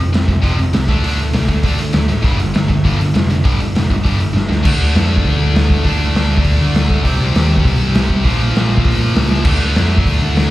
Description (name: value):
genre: punk rock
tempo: 200 BPM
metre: 4/4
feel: straight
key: unclear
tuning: A4 = 438 Hz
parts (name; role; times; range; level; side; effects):
- tight distorted guitar; riff; 0.0-10.5 s; F2 to D4; -19 LUFS; equal; distortion, slapback echo
- overdriven picked electric bass; bass; 0.0-10.5 s; F1 to D3; -16 LUFS; equal; none
- raw garage drum kit; drums; 0.1-10.4 s; crash cymbal, hi-hat, kick drum, snare drum; -16 LUFS; equal; none
room: studio reverb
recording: live gig heard through the venue's PA, club reverb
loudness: -12 LUFS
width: side -16 dB against mid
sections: 0.0-4.7 A section; 4.7-10.5 B section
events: drum fill 4.4, 9.3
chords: 0.0 F5; 0.9 D5; 2.2 G5; 4.7 D5; 7.1 Cm; 8.3 Bb5; 9.5 Dm